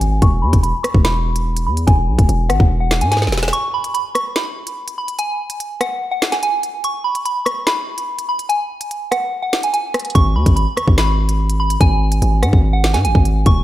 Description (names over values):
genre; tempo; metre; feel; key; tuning
hip hop, drill; 145 BPM; 4/4; half-time; G# minor; A4 = 440 Hz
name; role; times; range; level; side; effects
soft synth bell; melody; 0.0-13.6 s; F#5 to C#6; -20 LUFS; equal; chorus, phaser, low-pass filter, digital delay
distorted 808-style bass; bass; 0.0-3.5, 10.2-13.6 s; E1 to G#2; -16 LUFS; equal; distortion
drill drum kit; drums; 0.0-13.6 s; hi-hat, kick drum, rim click, snare drum; -16 LUFS; equal; none
room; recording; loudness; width
little or no reverb; none; -14 LUFS; side -14 dB against mid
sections
0.0-13.6 A section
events
filter sweep on synth bell 0.0-3.5; drum fill 3.1-3.5; break 3.5-10.2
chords
0.2 E; 3.5 N.C.; 10.2 G#m